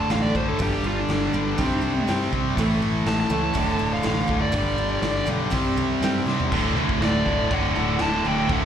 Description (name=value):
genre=quiet-loud alternative rock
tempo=122 BPM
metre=4/4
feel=straight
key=unclear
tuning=A4 = 440 Hz
part: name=dark smooth lead guitar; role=melody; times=0.0-8.7 s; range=D4 to A5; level=-28 LUFS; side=right 1 dB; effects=overdrive, slapback echo
part: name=picked steel-string acoustic guitar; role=arpeggios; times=0.0-6.5 s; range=D2 to C4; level=-30 LUFS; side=right 2 dB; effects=slapback echo, analog delay
part: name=high-gain distorted guitar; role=riff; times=0.0-8.7 s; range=D2 to C4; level=-27 LUFS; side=right 10 dB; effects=distortion
part: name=tight distorted guitar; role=riff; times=0.0-8.7 s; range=D2 to C4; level=-26 LUFS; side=left 9 dB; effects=distortion, slapback echo
part: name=fuzz fingered electric bass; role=bass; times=0.0-8.7 s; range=D1 to C3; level=-29 LUFS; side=equal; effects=overdrive
part: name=raw garage drum kit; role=drums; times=0.1-8.6 s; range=crash cymbal, hi-hat, kick drum, snare drum, toms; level=-28 LUFS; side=equal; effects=none
part: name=distorted electric guitar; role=riff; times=6.5-8.7 s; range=D2 to D3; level=-28 LUFS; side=right 1 dB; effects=distortion
room=light reverb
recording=live gig heard through the venue's PA, club reverb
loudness=-20 LUFS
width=side -9 dB against mid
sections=0.0-6.5 A section; 6.5-8.7 B section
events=lead electric guitar solo 0.0-6.5; drum fill 6.3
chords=0.0 D5; 0.6 G5; 1.6 C5; 2.6 A; 3.6 D5; 4.5 G; 5.5 C5; 6.5 D